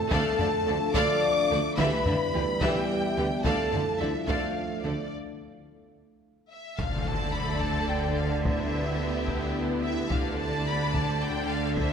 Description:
cinematic, hybrid orchestral and electronic film score; 72 BPM (dotted quarters); 6/8; straight; D dorian; A4 = 440 Hz
warm symphonic violin section; melody; 0.0-11.9 s; D5 to D6; -34 LUFS; left 2 dB
dark French horn section; sustained chords; 0.0-5.1 s; D4 to D5; -29 LUFS; left 2 dB
dark analog pad; sustained chords; 0.0-11.9 s; G3 to F5; -34 LUFS; left 1 dB; chorus, phaser
warm symphonic violin section; second line; 0.1-11.9 s; G4 to F5; -34 LUFS; left 2 dB
clear symphonic viola section; accompaniment; 0.1-11.9 s; E3 to A4; -35 LUFS; right 1 dB
mellow trombone section; sustained chords; 0.1-5.1 s; E3 to A3; -35 LUFS; right 4 dB
clear symphonic cello section; bass; 0.1-11.9 s; D3; -35 LUFS; right 2 dB
mellow tuba; bass; 0.1-5.0 s; D2; -36 LUFS; right 3 dB
rich symphonic double bass section; bass; 0.1-11.9 s; D2; -34 LUFS; right 2 dB
taiko ensemble; drums; 0.1-11.9 s; -34 LUFS; left 1 dB
impact; sound effects; 6.8-8.4 s; -35 LUFS; left 1 dB
wet concert hall reverb, RT60 1.9 s; -25 LUFS; side -7 dB against mid
0.0-6.8 A section; 6.8-11.9 B section
break 5.1-6.8; impact 6.8-8.4
0.1 Dm; 1.8 Em/D; 3.4 Dm; 5.1 N.C.; 6.8 D5; 8.4 Em/D; 10.1 D5

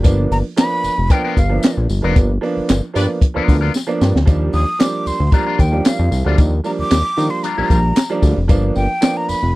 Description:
funk; 114 BPM; 4/4; straight; A4 = 437 Hz
warm upright piano; stabs; 0.0-9.4 s; F3 to G4; -22 LUFS; right 3 dB
fat analog bass; bass; 0.0-9.5 s; F1 to Eb3; -16 LUFS; equal
compact cocktail drum kit; drums; 0.0-9.4 s; handclaps, hi-hat, kick drum, snare drum; -13 LUFS; equal
tambourine; percussion; 0.0-9.4 s; -34 LUFS; left 7 dB
breathy jazz flute; melody; 0.3-9.6 s; F5 to Eb6; -21 LUFS; equal
electric guitar with an envelope filter; accompaniment; 1.1-7.8 s; G3 to A#4; -23 LUFS; left 9 dB
warm horn section; second line; 3.0 s; D4 to D5; -22 LUFS; right 1 dB
little or no reverb; dry, close 1970s-style studio recording; -14 LUFS; side -19 dB against mid
0.0-9.6 A section
band accent 2.2-4.3; drum fill 3.7-4.3
0.0 G7#9; 4.3 Ebmaj9; 8.5 G7#9

